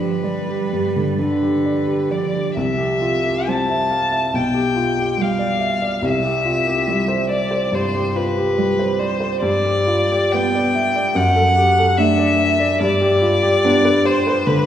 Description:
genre	classical, slow romantic movement for piano trio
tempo	70 BPM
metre	4/4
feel	uneven beats, rubato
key	C major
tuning	A4 = 440 Hz
part	rich violin	melody	0.0-14.7 s	B4 to A5	-20 LUFS	left 2 dB	none
part	warm cello	second line	0.0-14.3 s	D3 to B3	-26 LUFS	right 4 dB	none
part	clear grand piano	accompaniment	0.0-14.7 s	B1 to F5	-18 LUFS	equal	none
room	wet scoring stage reverb, RT60 2.0 s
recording	heard from further back in the room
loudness	-16 LUFS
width	side -10 dB against mid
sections	0.0-2.6 A section; 2.6-14.7 B section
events	none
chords	0.0 G; 2.6 C; 4.3 G/B; 6.0 C; 9.4 G; 11.2 D/F#; 12.8 G

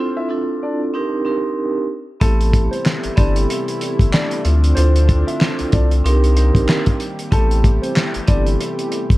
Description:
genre	hip hop, boom-bap hip-hop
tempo	94 BPM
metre	4/4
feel	swing 60% on 16ths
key	A minor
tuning	A4 = 442 Hz
part	dark upright piano	melody	0.0-8.5 s	A3 to E5	-26 LUFS	left 1 dB	high-pass filter, low-pass filter
part	vibraphone with soft mallets	accompaniment	0.0-9.2 s	B3 to Bb4	-22 LUFS	right 2 dB	cassette tape, high-pass filter, low-pass filter
part	warm analog pad	sustained chords	2.2-9.2 s	C3 to G4	-28 LUFS	left 1 dB	chorus, high-pass filter, low-pass filter
part	warm sub bass	bass	2.2-9.2 s	G1 to D2	-15 LUFS	equal	none
part	cloth-damped thuddy drum kit	drums	2.2-9.2 s	handclaps, hi-hat, kick drum, snare drum	-17 LUFS	equal	none
room	small room reverb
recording	dark, warm production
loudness	-15 LUFS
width	side -18 dB against mid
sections	0.0-9.2 A section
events	none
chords	0.0 Dm7; 0.9 Cm7; 2.2 Am7; 4.4 Dm7; 6.0 Cm7; 7.3 Am7

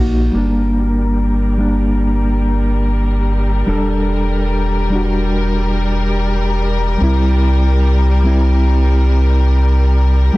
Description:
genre	trip hop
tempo	72 BPM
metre	4/4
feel	swing 54% on 16ths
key	G harmonic minor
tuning	A4 = 442 Hz
part	mellow reed electric piano	accompaniment	0.0-10.4 s	G3 to A4	-19 LUFS	equal	tremolo, tape echo
part	round analog bass	bass	0.0-10.4 s	Eb1 to C2	-14 LUFS	equal	none
part	muted studio string section	sustained chords	0.3-10.4 s	G3 to Bb4	-22 LUFS	left 3 dB	low-pass filter
room	light reverb, digital ambience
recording	dense, heavily limited modern master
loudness	-12 LUFS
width	side -19 dB against mid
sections	0.3-10.4 A section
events	filter sweep on string section 0.3-10.4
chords	0.3 Gm; 3.7 Em7; 7.0 C

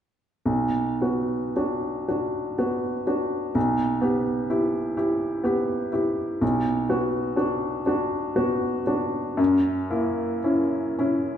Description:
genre	classical, romantic nocturne for solo piano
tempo	35-43 BPM (dotted quarters)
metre	6/8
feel	rubato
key	B minor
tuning	A4 = 441 Hz
part	bright upright piano	solo	0.5-11.4 s	B1 to G4	-22 LUFS	equal	none
room	wet recital hall reverb, RT60 1.4 s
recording	dark, warm production, nothing above 10.5 kHz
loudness	-22 LUFS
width	side -9 dB against mid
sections	0.5-11.4 A section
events	none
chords	0.5 Bm; 3.6 Em/B; 6.4 Bm; 9.4 F#7

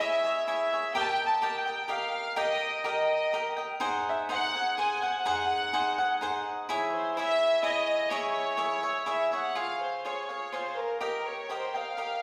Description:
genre	mexican folk, mariachi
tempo	125 BPM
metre	3/4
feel	rubato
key	C# harmonic minor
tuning	A4 = 440 Hz
part	warm studio violin section	melody	0.0-12.2 s	Bb4 to A5	-32 LUFS	equal	none
part	cavaquinho	accompaniment	0.0-12.2 s	D#4 to G5	-33 LUFS	equal	none
room	wet recital hall reverb, RT60 1.4 s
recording	recorded in a church or concert hall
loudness	-29 LUFS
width	mono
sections	0.0-9.6 A section; 9.6-12.2 B section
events	none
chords	0.0 C#m; 0.9 D#; 3.8 G#7; 6.7 C#m; 9.6 Db; 11.0 Eb

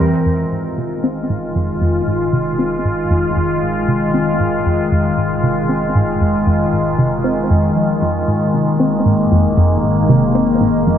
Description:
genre	ambient, sequencer-driven space music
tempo	116 BPM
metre	4/4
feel	straight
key	F minor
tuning	A4 = 440 Hz
part	evolving wavetable pad	sustained chords	0.0-11.0 s	Eb3 to F4	-16 LUFS	left 1 dB	chorus, built-in reverb
part	tight sequenced synth	riff	0.0-11.0 s	F2 to C4	-17 LUFS	equal	chorus, analog delay
room	moderate plate reverb, RT60 3.8 s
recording	nothing above 11.0 kHz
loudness	-14 LUFS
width	side -9 dB against mid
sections	0.0-11.0 A section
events	filter sweep on synth arpeggio sound 0.0-11.0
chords	0.0 Fm7

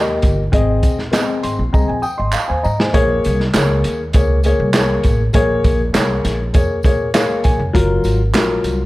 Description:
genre	uptempo 1960s-style soul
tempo	100 BPM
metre	4/4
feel	straight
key	unclear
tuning	A4 = 440 Hz
part	dark upright piano	accompaniment	0.0-8.8 s	Gb3 to Eb6	-18 LUFS	left 2 dB	none
part	upright bass	bass	0.0-8.9 s	F1 to Bb2	-19 LUFS	equal	none
part	crunchy breakbeat drum kit	drums	0.2-8.8 s	hi-hat, kick drum, snare drum	-18 LUFS	equal	none
part	tambourine and handclaps	percussion	0.3-8.8 s	none	-25 LUFS	right 4 dB	none
room	little or no reverb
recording	none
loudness	-13 LUFS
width	side -18 dB against mid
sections	0.0-2.9 A section; 2.9-8.9 B section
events	upright piano fill 1.1-2.9, 6.8-7.7; drum fill 1.7-2.9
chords	0.0 Eb; 0.5 Ab; 2.9 Bbm7; 7.7 Gbmaj7

